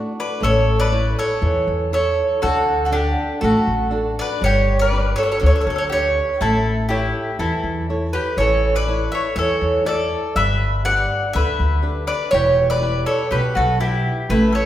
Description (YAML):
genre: greek folk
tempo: 121 BPM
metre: 4/4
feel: straight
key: unclear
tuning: A4 = 440 Hz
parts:
  - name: Greek bouzouki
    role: melody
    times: 0.0-14.7 s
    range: G4 to F#5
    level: -20 LUFS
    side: right 1 dB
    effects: none
  - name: flamenco guitar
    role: accompaniment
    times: 0.0-14.7 s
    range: B2 to F#5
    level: -25 LUFS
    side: right 1 dB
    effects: none
  - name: mandolin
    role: second line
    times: 0.2-14.7 s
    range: D4 to D5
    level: -24 LUFS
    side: left 2 dB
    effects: none
  - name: upright bass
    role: bass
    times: 0.4-14.7 s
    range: E1 to E2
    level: -21 LUFS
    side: equal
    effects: none
room: wet recital hall reverb, RT60 1.7 s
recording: recorded in a church or concert hall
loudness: -16 LUFS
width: side -12 dB against mid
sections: 0.4-14.7 A section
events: none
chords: 0.4 A; 2.4 D; 4.4 G; 6.4 A; 10.4 G; 12.3 Em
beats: | 0.42 0.93 1.43 1.93 | 2.43 2.93 3.42 3.92 | 4.42 4.92 5.42 5.91 | 6.41 6.90 7.40 7.89 | 8.39 8.88 9.37 9.87 | 10.36 10.85 11.34 11.83 | 12.33 12.82 13.31 13.80 | 14.29